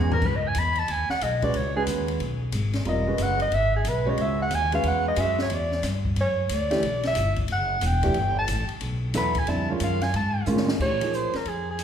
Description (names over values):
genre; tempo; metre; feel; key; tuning
modal jazz; 182 BPM; 4/4; swing 64% on 8ths; unclear; A4 = 438 Hz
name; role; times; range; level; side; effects
mellow soprano saxophone; melody; 0.0-11.8 s; Ab4 to B5; -26 LUFS; equal; none
warm baby grand piano; accompaniment; 0.0-11.3 s; D3 to C#5; -29 LUFS; right 3 dB; none
upright bass; bass; 0.0-11.8 s; E1 to Bb2; -27 LUFS; equal; none
open jazz drum kit; drums; 0.0-11.8 s; crash cymbal, hi-hat, kick drum, ride cymbal, snare drum, toms; -32 LUFS; left 2 dB; none
room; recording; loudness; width
wet recital hall reverb, RT60 1.7 s; recorded in a church or concert hall; -22 LUFS; side -8 dB against mid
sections
0.2-10.8 A section; 10.8-11.8 B section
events
drum fill 0.0, 10.5-10.8; soprano saxophone solo 0.0-10.8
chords
0.2 C#m9; 5.5 Em9; 9.5 F7alt; 10.8 Bbm9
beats
| 0.23 0.55 0.88 1.21 | 1.54 1.87 2.20 2.53 | 2.86 3.19 3.52 3.85 | 4.18 4.51 4.84 5.18 | 5.51 5.84 6.17 6.50 | 6.83 7.16 7.49 7.82 | 8.15 8.48 8.81 9.14 | 9.47 9.80 10.14 10.47 | 10.80 11.13 11.46 11.79